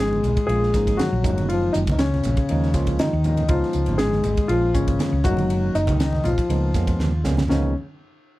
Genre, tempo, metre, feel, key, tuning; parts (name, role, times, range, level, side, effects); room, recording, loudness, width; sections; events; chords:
electric jazz fusion; 120 BPM; 4/4; straight; Db mixolydian; A4 = 439 Hz
dark baby grand piano; melody; 0.0-7.7 s; Db4 to Ab4; -24 LUFS; left 2 dB
mellow bass clarinet; second line; 0.0-7.7 s; Db3 to Ab3; -28 LUFS; left 4 dB; slapback echo
tine electric piano; accompaniment; 0.0-7.7 s; F3 to F4; -28 LUFS; right 3 dB; medium stereo tremolo
hollow-body short-scale fingered electric bass; bass; 0.0-7.7 s; Gb1 to F2; -23 LUFS; equal
congas; percussion; 0.1-7.7 s; -29 LUFS; right 2 dB
crisp fusion drum kit; drums; 0.2-7.6 s; hi-hat, kick drum, ride cymbal, snare drum; -26 LUFS; equal
little or no reverb; -18 LUFS; side -17 dB against mid
0.0-7.5 A section
drum fill 7.0-7.5
0.5 Bbm7; 1.2 Gb6; 2.5 Eb9sus4; 3.5 Db9; 4.5 Bbm7; 5.2 Gb6; 6.5 Db13